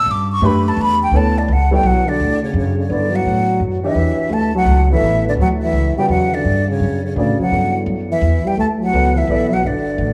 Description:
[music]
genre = modal jazz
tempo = 169 BPM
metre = 3/4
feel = swing 65% on 8ths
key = D major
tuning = A4 = 439 Hz
[part]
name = breathy concert flute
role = melody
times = 0.0-10.1 s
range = C#5 to E6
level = -22 LUFS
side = equal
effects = none
[part]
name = upright bass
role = bass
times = 0.0-10.1 s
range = G1 to A2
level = -20 LUFS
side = equal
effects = none
[part]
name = dark grand piano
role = accompaniment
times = 0.4-9.5 s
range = C#3 to E5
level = -25 LUFS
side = equal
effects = lush chorus
[part]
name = mellow trombone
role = second line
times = 1.7-10.1 s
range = C#3 to A3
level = -22 LUFS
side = equal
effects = none
[sound]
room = moderate plate reverb, RT60 3.0 s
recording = dreamy mix soaked in reverb, small room ambience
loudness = -16 LUFS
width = mono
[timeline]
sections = 0.0-2.2 A section; 2.2-10.1 B section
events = flute solo 0.0-2.2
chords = 0.0 Gmaj9; 2.2 Dmaj9; 6.5 Gmaj9

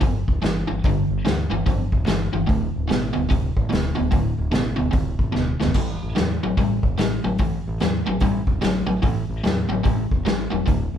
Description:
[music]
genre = blues rock power trio and southern rock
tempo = 147 BPM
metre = 4/4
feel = swing 62% on 8ths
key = unclear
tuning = A4 = 440 Hz
[part]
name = crunchy overdriven guitar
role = riff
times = 0.0-11.0 s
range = D2 to G3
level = -23 LUFS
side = equal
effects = none
[part]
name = growling fingered electric bass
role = bass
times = 0.0-11.0 s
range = D1 to E2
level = -27 LUFS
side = equal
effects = overdrive
[part]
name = vintage drum kit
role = drums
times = 0.0-10.8 s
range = hi-hat, kick drum, snare drum, splash cymbal, toms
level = -23 LUFS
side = equal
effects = none
[sound]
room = light reverb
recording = band playing live in one room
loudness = -19 LUFS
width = side -9 dB against mid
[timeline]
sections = 0.0-11.0 A section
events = drum fill 5.3-5.8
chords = 0.0 G5; 2.5 D5; 5.8 A5

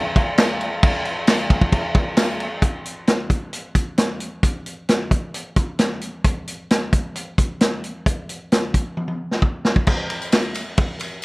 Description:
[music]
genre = rock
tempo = 132 BPM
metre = 4/4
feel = straight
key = none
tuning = none
[part]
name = vintage drum kit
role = drums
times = 0.2-11.1 s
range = crash cymbal, hi-hat, kick drum, ride cymbal, snare drum, toms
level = -18 LUFS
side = equal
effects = none
[part]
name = tambourine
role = percussion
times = 0.4-2.3, 9.9-11.2 s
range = none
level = -34 LUFS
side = left 3 dB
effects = none
[sound]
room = light reverb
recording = dark, warm production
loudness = -18 LUFS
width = side -25 dB against mid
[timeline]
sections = 0.0-2.6 A section; 2.6-9.9 B section; 9.9-11.2 C section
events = drum fill 9.0-9.9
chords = none

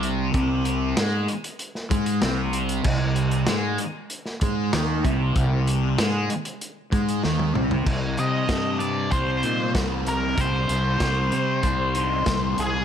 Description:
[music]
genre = psychedelic rock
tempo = 96 BPM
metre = 4/4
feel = straight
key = C minor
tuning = A4 = 440 Hz
[part]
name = thick fuzz guitar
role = riff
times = 0.0-12.8 s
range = C3 to Eb4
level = -25 LUFS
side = equal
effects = distortion, phaser
[part]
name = fuzz fingered electric bass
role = bass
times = 0.0-12.8 s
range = C2 to C3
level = -26 LUFS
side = equal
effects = overdrive
[part]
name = crunchy breakbeat drum kit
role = drums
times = 0.0-12.7 s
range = crash cymbal, hi-hat, kick drum, snare drum, toms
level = -27 LUFS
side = equal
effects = none
[part]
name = octave-fuzz lead guitar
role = melody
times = 8.2-12.8 s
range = Ab4 to Eb5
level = -26 LUFS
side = left 1 dB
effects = wah, distortion, slapback echo
[sound]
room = light reverb, small room ambience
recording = none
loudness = -21 LUFS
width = side -8 dB against mid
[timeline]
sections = 0.0-7.9 A section; 7.9-12.8 B section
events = drum fill 7.2-7.9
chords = 0.0 Cm

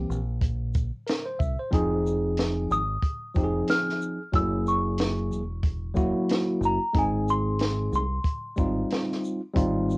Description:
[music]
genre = hip hop, jazz-hop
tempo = 92 BPM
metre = 4/4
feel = swing 59% on 16ths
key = Ab major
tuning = A4 = 440 Hz
[part]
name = tine electric piano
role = accompaniment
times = 0.0-10.0 s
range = E3 to E5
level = -27 LUFS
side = equal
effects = medium stereo tremolo, cassette tape
[part]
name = deep dub fingered electric bass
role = bass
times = 0.0-10.0 s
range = Fb1 to C2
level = -29 LUFS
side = equal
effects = none
[part]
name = compact cocktail drum kit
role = drums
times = 0.1-10.0 s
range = hi-hat, kick drum, shaker, snare drum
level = -27 LUFS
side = equal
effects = none
[part]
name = small celesta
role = melody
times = 2.7-10.0 s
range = Ab5 to F6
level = -28 LUFS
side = equal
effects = cassette tape
[sound]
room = moderate booth ambience, RT60 0.2 s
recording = home recording on cassette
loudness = -24 LUFS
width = side -25 dB against mid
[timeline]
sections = 0.0-10.0 A section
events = none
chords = 0.0 C7; 1.7 Fm7; 4.3 Gb9; 6.9 Abmaj7

